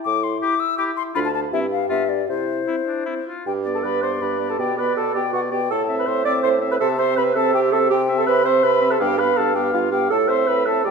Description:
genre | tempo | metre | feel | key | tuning
quick classical-period movement for wind quintet | 162 BPM | 3/4 | rubato | C major, G major from 3.5 s, C major from 7.9 s | A4 = 441 Hz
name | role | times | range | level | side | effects
concert flute | melody | 0.0-10.9 s | C5 to E6 | -24 LUFS | left 9 dB | none
mellow French horn | accompaniment | 0.0-10.9 s | A3 to G4 | -27 LUFS | left 2 dB | none
mellow bassoon | bass | 0.1-10.9 s | D2 to C3 | -25 LUFS | right 1 dB | none
clear oboe | second line | 0.4-10.9 s | D4 to F5 | -28 LUFS | left 4 dB | none
dark clarinet | accompaniment | 0.4-10.9 s | B3 to D5 | -21 LUFS | right 7 dB | none
room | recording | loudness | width
moderate scoring stage reverb, RT60 1.6 s | none | -18 LUFS | side -5 dB against mid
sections
0.0-3.5 A section; 3.5-10.9 B section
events
none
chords
0.1 A5; 1.2 Dm; 1.5 C/G; 1.9 G7; 2.3 C; 3.5 G; 4.6 Gadd9/B; 5.7 Am; 6.8 C; 9.0 G7; 10.1 Am

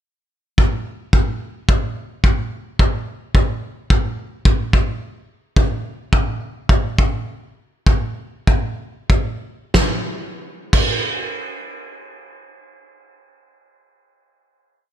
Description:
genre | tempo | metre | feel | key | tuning
pop | 92-109 BPM | 4/4 | straight | none | none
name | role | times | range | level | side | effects
loose indie drum kit | drums | 0.6-10.9 s | crash cymbal, kick drum, snare drum | -16 LUFS | equal | none
room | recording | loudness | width
little or no reverb | none | -18 LUFS | side -11 dB against mid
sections
0.6-9.7 verse; 9.7-12.4 final hit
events
slowing down 5.0-9.7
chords
none

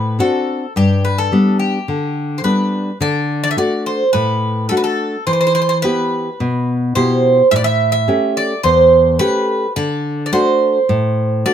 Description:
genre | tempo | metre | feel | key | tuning
greek folk, Greek bouzouki band | 107 BPM | 4/4 | straight | unclear | A4 = 440 Hz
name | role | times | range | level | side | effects
Greek bouzouki | melody | 0.0-11.5 s | G4 to E5 | -16 LUFS | right 3 dB | none
nylon-string guitar | accompaniment | 0.0-11.5 s | E2 to G4 | -16 LUFS | left 2 dB | none
room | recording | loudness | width
light reverb | close, detailed microphones | -13 LUFS | side -9 dB against mid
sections
0.0-3.0 A section; 3.0-11.5 B section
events
none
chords
0.0 D7; 0.8 G; 3.0 D; 5.3 Em; 7.5 A7; 9.8 D

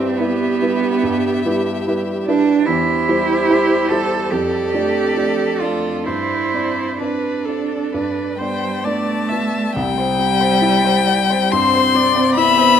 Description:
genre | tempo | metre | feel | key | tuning
classical, slow romantic movement for piano quartet | 64-75 BPM | 4/4 | rubato | C major | A4 = 440 Hz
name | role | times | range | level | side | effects
rich violin | melody | 0.0-12.8 s | C5 to C6 | -20 LUFS | left 9 dB | none
rich cello | second line | 0.0-12.8 s | G3 to A4 | -19 LUFS | right 5 dB | none
warm baby grand piano | accompaniment | 0.0-12.8 s | C2 to D5 | -21 LUFS | left 1 dB | none
warm viola | accompaniment | 0.0-12.8 s | G4 to E5 | -24 LUFS | right 2 dB | none
room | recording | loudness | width
moderate concert hall reverb, RT60 2.4 s | close, detailed microphones | -15 LUFS | side -8 dB against mid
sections
0.0-9.7 A section; 9.7-12.8 B section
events
none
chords
0.0 Em/G; 2.7 C/E; 4.3 Dm/F; 6.1 Gsus4; 7.9 G; 9.7 C

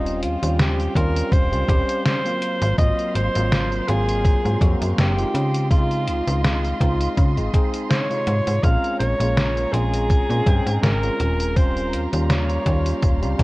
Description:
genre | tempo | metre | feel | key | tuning
vaporwave | 82 BPM | 4/4 | swing 54% on 16ths | unclear | A4 = 441 Hz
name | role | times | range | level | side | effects
bright alto saxophone | melody | 0.0-13.4 s | Eb4 to F5 | -25 LUFS | equal | tape echo
tine electric piano | accompaniment | 0.0-13.4 s | C3 to G5 | -26 LUFS | equal | analog chorus
rich studio string section | sustained chords | 0.0-13.4 s | F4 to C6 | -35 LUFS | right 2 dB | none
slap-like FM bass | bass | 0.0-13.4 s | Eb1 to Db3 | -22 LUFS | equal | tube saturation
detuned 8-bit digital drum machine | drums | 0.1-13.4 s | hi-hat, snare drum, tambourine | -25 LUFS | equal | gated reverb
electronic kick drum | drums | 1.0-13.4 s | none | -19 LUFS | equal | none
room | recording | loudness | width
little or no reverb | cassette tape | -18 LUFS | side -20 dB against mid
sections
0.0-13.4 A section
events
none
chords
0.0 Eb13; 2.4 Ab13; 5.3 Dbmaj9; 8.6 Bbm7; 11.6 Eb13

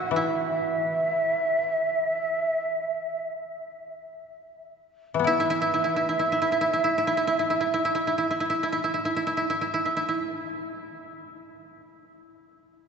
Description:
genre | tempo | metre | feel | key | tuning
japanese traditional, Japanese chamber music | 44-65 BPM | 4/4 | rubato | unclear | A4 = 436 Hz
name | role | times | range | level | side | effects
breathy shakuhachi | melody | 0.0-8.4 s | E5 to F#5 | -27 LUFS | right 2 dB | none
koto | second line | 0.0-12.3 s | E4 to F#4 | -26 LUFS | right 1 dB | none
koto | accompaniment | 0.0-8.5 s | E3 to E4 | -31 LUFS | left 5 dB | none
room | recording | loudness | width
wet cathedral reverb, RT60 5.5 s | recorded in a church or concert hall, nothing above 8.0 kHz | -23 LUFS | side -6 dB against mid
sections
0.0-5.3 A section; 5.3-10.5 B section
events
slowing down 0.0-5.3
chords
none

